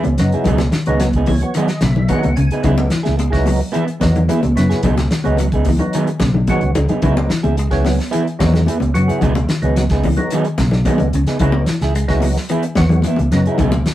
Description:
afrobeat; 110 BPM; 4/4; straight; C# minor; A4 = 440 Hz
clean electric guitar; arpeggios; 0.0-13.9 s; B2 to G#3; -22 LUFS; left 2 dB; slapback echo
electric guitar at the edge of break-up; stabs; 0.0-13.9 s; F#3 to G#4; -22 LUFS; right 3 dB
warm soul drum kit; drums; 0.0-13.9 s; hi-hat, kick drum, snare drum; -22 LUFS; equal
congas; percussion; 0.0-13.9 s; -21 LUFS; left 1 dB
vintage muted fingered electric bass; bass; 0.1-13.9 s; B1 to F#2; -17 LUFS; equal
percussive tonewheel organ; accompaniment; 0.2-13.6 s; F#3 to G#5; -23 LUFS; equal; slow rotary speaker, chorus vibrato
light reverb; rough rehearsal-room recording; -14 LUFS; side -14 dB against mid
0.0-13.9 A section
tonewheel organ fill 1.0-2.7; drum fill 6.5-7.0
0.5 G#m7/C#; 2.7 C#m7; 4.8 G#m7/C#; 7.0 C#m7; 9.2 G#m7/C#; 11.4 C#m7

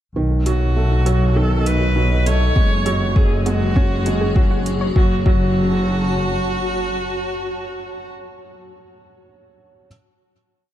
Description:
piano and strings electronica; 100 BPM; 4/4; straight; F# dorian; A4 = 441 Hz
granular cloud pad; sustained chords; 1.0-8.1 s; B3 to A5; -28 LUFS; left 1 dB; built-in reverb, sidechain pumping
warbly dusty pluck; arpeggios; 0.2-5.4 s; D#4 to F#5; -32 LUFS; right 1 dB
felt-muted upright piano; riff; 0.2-9.9 s; D#3 to C#4; -24 LUFS; right 3 dB
bright studio double bass section; bass; 0.2-6.7 s; F#1 to B1; -19 LUFS; left 1 dB; tube saturation, sidechain pumping
clear viola; melody; 0.5-8.1 s; F#4 to C#5; -25 LUFS; right 2 dB
electronic hi-hat; drums; 0.5-4.8 s; -31 LUFS; right 1 dB; overdrive
electronic kick drum; drums; 2.6-5.4 s; -16 LUFS; equal
small room ambience; dark, warm production; -16 LUFS; side -12 dB against mid
0.2-5.0 build; 5.0-7.4 final chord
build-up 0.2-5.0
0.2 B7; 2.6 F#sus2; 5.0 F#m

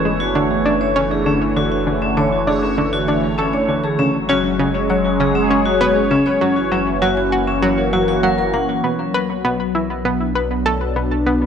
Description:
ambient, sequencer-driven space music; 99 BPM; 4/4; straight; F# minor; A4 = 442 Hz
phased analog pad; sustained chords; 0.0-11.5 s; D3 to C#5; -19 LUFS; equal; phaser, chorus
vibraphone with hard mallets; arpeggios; 0.0-8.6 s; C#4 to F#5; -22 LUFS; left 2 dB; auto-pan, analog delay
warm sub bass; bass; 0.0-11.5 s; F#1 to B1; -28 LUFS; equal
bubbling stepped-filter texture; texture; 0.0-8.8 s; C#5; -28 LUFS; right 2 dB; chorus, built-in reverb
analog pluck; riff; 0.1-11.5 s; C#3 to B4; -20 LUFS; equal; chorus, analog delay
wet plate reverb, RT60 2.4 s; nothing above 10.5 kHz; -15 LUFS; side -7 dB against mid
0.0-8.8 A section; 8.8-11.5 B section
0.0 Esus4/F#; 4.0 C#sus4/F#; 6.4 F#7; 8.8 Bm7

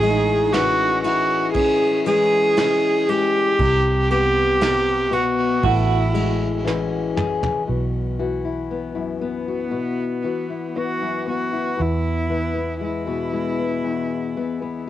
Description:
acoustic folk-pop ballad; 58 BPM; 4/4; straight; A4 = 440 Hz
warm cello; melody; 0.0-14.8 s; B3 to G#4; -21 LUFS; right 1 dB
fingerpicked steel-string acoustic guitar; accompaniment; 0.0-14.9 s; E2 to G#4; -23 LUFS; left 6 dB; cassette tape
electric guitar through a small old amp; arpeggios; 0.0-7.9 s; D#4 to F#4; -27 LUFS; right 9 dB; tremolo, cassette tape
vintage muted fingered electric bass; bass; 0.0-14.9 s; A1 to E2; -25 LUFS; right 2 dB; tube saturation
soft brush drum kit; drums; 0.0-7.7 s; kick drum, ride cymbal, snare drum, toms; -29 LUFS; right 1 dB; cassette tape
light reverb; home recording on cassette; -18 LUFS; side -12 dB against mid
0.0-7.7 A section; 7.7-14.9 B section
drum fill 6.7-7.7
0.0 Amaj7; 3.6 Cmaj7; 5.6 Amaj7; 7.7 Bsus4; 11.8 E

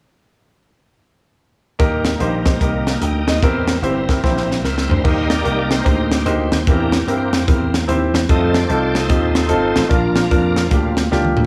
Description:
uptempo gospel; 148 BPM; 4/4; swing 63% on 8ths; Eb major; A4 = 440 Hz
clear grand piano; accompaniment; 1.8-11.4 s; Bb2 to G5; -22 LUFS; equal
bright tonewheel organ; sustained chords; 1.8-11.1 s; E3 to G5; -26 LUFS; equal; slow rotary speaker, overdrive, chorus vibrato
dry thumbed slap bass; bass; 1.8-11.5 s; G1 to G2; -23 LUFS; equal
crisp fusion drum kit; drums; 1.8-11.4 s; crash cymbal, hi-hat, kick drum, snare drum, toms; -21 LUFS; equal
light reverb, small room ambience; small room reverb; -17 LUFS; mono
1.8-5.1 A section; 5.1-11.5 B section
drum fill 4.2-5.1, 11.1-11.5; tonewheel organ solo 5.1-11.5
1.8 Eb; 3.4 C7; 5.1 Eb; 6.7 C7/E; 8.3 F7; 9.9 Bb

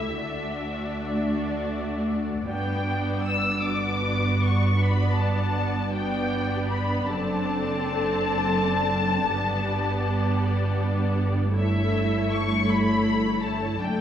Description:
classical, slow romantic movement for string orchestra; 53 BPM (dotted quarters); 12/8; rubato; D major; A4 = 441 Hz
muted symphonic violin section; melody; 0.0-14.0 s; E5 to E6; -29 LUFS; left 3 dB
muted studio violin section; second line; 0.0-14.0 s; F#4 to D5; -32 LUFS; left 2 dB
muted symphonic viola section; accompaniment; 0.0-14.0 s; A3 to E4; -28 LUFS; equal
muted symphonic cello section; bass; 0.0-14.0 s; C#2 to G2; -29 LUFS; right 2 dB
muted symphonic double bass section; bass; 0.0-14.0 s; F#1 to D2; -29 LUFS; right 2 dB
wet scoring stage reverb, RT60 1.7 s; heard from further back in the room; -22 LUFS; side -9 dB against mid
0.0-14.0 A section
0.2 D; 2.5 Gmaj7; 7.1 D7/F#; 9.3 G; 11.6 A7/G

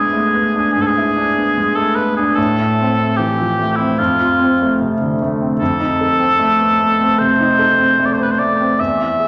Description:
classical, romantic duo for cor anglais and grand piano; 75 BPM; 4/4; rubato; A4 = 440 Hz
warm cor anglais; melody; 0.0-9.3 s; E4 to E5; -18 LUFS; equal
clear grand piano; accompaniment; 0.0-9.3 s; E2 to A4; -19 LUFS; equal
wet recital hall reverb, RT60 1.7 s; -15 LUFS; mono
0.0-9.3 A section
0.0 E7/G#; 2.4 Am; 4.0 F; 5.6 F7

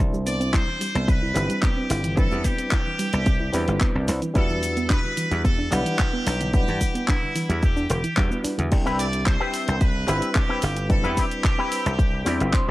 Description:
nu-disco, nu disco; 110 BPM; 4/4; straight; A4 = 440 Hz
barky reed electric piano; accompaniment; 0.0-12.7 s; G3 to B5; -30 LUFS; equal; overdrive, fast tremolo, sidechain pumping, cassette tape
soft round pluck; arpeggios; 0.0-8.6 s; D3 to E4; -30 LUFS; right 1 dB; chorus, sidechain pumping, cassette tape, tape echo
dry thumbed slap bass; bass; 0.0-12.7 s; E1 to G2; -26 LUFS; equal; sidechain pumping
house drum kit; drums; 0.0-12.7 s; crash cymbal, handclaps, hi-hat, shaker; -30 LUFS; equal; cassette tape
muted trumpet section; melody; 0.3-12.7 s; E4 to D5; -29 LUFS; equal; tape echo
electronic kick drum; drums; 0.5-12.7 s; -22 LUFS; equal; cassette tape
electric guitar with an envelope filter; riff; 8.9-12.7 s; C4 to G5; -27 LUFS; left 2 dB; analog chorus, cassette tape
light reverb; home recording on cassette; -20 LUFS; side -17 dB against mid
0.0-12.7 A section
clean electric guitar fill 12.0-12.7
0.0 Cmaj7; 4.4 Em7; 8.7 Cmaj7

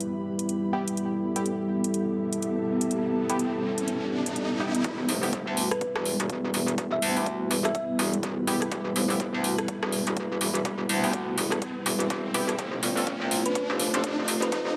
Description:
bass house; 124 BPM; 4/4; swing 59% on 16ths; E phrygian; A4 = 441 Hz
dark analog pad; sustained chords; 0.0-14.8 s; G3 to C5; -33 LUFS; equal; chorus, sidechain pumping
house drum kit; drums; 0.0-14.6 s; hi-hat, rim click; -33 LUFS; equal; high-pass filter on snare, studio ambience, high-pass filter on hats, high-pass filter on perc
downlifter and riser; sound effects; 2.1-14.8 s; -39 LUFS; equal
granular cloud pad; texture; 0.0-14.8 s; B3 to C6; -35 LUFS; equal; built-in reverb, sidechain pumping
band-passed chord stab; stabs; 0.7-14.0 s; B3 to A4; -37 LUFS; equal; chorus, sidechain pumping, digital delay
metallic wobble bass; bass; 4.8-14.7 s; E1 to D2; -32 LUFS; equal; chorus, tube saturation, sidechain pumping, high-pass filter
electronic kick drum; drums; 4.8-14.6 s; -37 LUFS; equal; high-pass filter on kick, studio ambience
thumb-piano-like synth pluck; melody; 5.7-7.8, 13.5-14.5 s; B4 to E5; -34 LUFS; equal; chorus, digital delay
moderate lush hall reverb, RT60 1.9 s; high-pass filter; -27 LUFS; mono
0.0-4.8 A section; 4.8-14.8 B section
filter sweep on synth stab 0.0-4.8; riser 2.1-4.8, 4.8-14.8; build-up 4.8-14.8; drum fill 12.6-14.8
0.0 Em; 12.6 F

